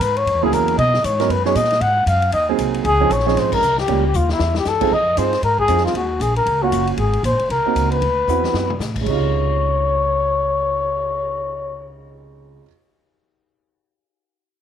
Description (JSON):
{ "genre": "jazz, small-group swing and bop", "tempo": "232 BPM", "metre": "4/4", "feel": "swing 60% on 8ths", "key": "Db major", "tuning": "A4 = 440 Hz", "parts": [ { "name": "breathy trumpet", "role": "melody", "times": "0.0-11.9 s", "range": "Fb4 to Gb5", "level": "-18 LUFS", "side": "left 3 dB", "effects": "none" }, { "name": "upright bass", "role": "bass", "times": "0.0-12.6 s", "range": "Gb1 to Cb3", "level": "-22 LUFS", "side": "equal", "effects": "none" }, { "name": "swinging big-band drum kit", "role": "drums", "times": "0.0-11.1 s", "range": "crash cymbal, cymbal swell, hi-hat, kick drum, ride cymbal, snare drum, toms", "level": "-30 LUFS", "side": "left 4 dB", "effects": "none" }, { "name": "warm grand piano", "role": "accompaniment", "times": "0.4-12.7 s", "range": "C3 to Bb4", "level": "-22 LUFS", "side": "right 15 dB", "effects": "none" } ], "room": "light reverb, small room ambience", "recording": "1960s-style stereo", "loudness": "-16 LUFS", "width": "side -9 dB against mid", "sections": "0.0-4.9 A section; 4.9-9.1 B section; 9.1-11.1 C section", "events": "band accent 3.5; drum fill 4.1-4.7, 8.3-8.8", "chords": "0.3 Gb7; 0.8 Cbmaj7; 1.8 Ab7; 2.8 Dbmaj7; 3.9 Gm7b5; 4.4 C; 4.9 Fm7; 5.9 Ebm9; 7.0 Ab9; 8.0 D13; 9.1 Dbmaj7" }